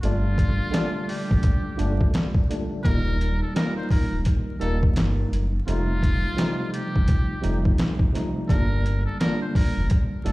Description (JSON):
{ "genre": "hip hop, boom-bap hip-hop", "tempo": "85 BPM", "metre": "4/4", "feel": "swing 61% on 16ths", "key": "G minor", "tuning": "A4 = 440 Hz", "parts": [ { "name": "trumpet with metal mute", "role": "melody", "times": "0.0-10.3 s", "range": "F4 to C5", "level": "-33 LUFS", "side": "equal", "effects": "high-pass filter, low-pass filter, digital delay" }, { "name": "tine electric piano", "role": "accompaniment", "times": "0.0-10.3 s", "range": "Bb2 to Eb4", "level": "-27 LUFS", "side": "equal", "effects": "overdrive, fast stereo tremolo, cassette tape, high-pass filter, low-pass filter" }, { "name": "sub bass with octave", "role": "bass", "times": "0.0-10.3 s", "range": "D1 to A1", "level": "-24 LUFS", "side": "equal", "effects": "none" }, { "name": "trip hop sampler-style drum kit", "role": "drums", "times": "0.0-10.3 s", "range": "hi-hat, kick drum, snare drum", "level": "-22 LUFS", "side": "equal", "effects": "overdrive" } ], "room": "little or no reverb", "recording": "played on a big sound system in a bare room, large studio reverb, vinyl crackle", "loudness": "-21 LUFS", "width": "side -20 dB against mid", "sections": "0.0-10.3 A section", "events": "none", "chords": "0.0 Gmadd9; 2.8 Eb; 5.7 F7; 8.5 Gm", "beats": "| 0.02 0.73 1.44 2.14 | 2.85 3.55 4.26 4.96 | 5.67 6.38 7.08 7.79 | 8.49 9.20 9.91" }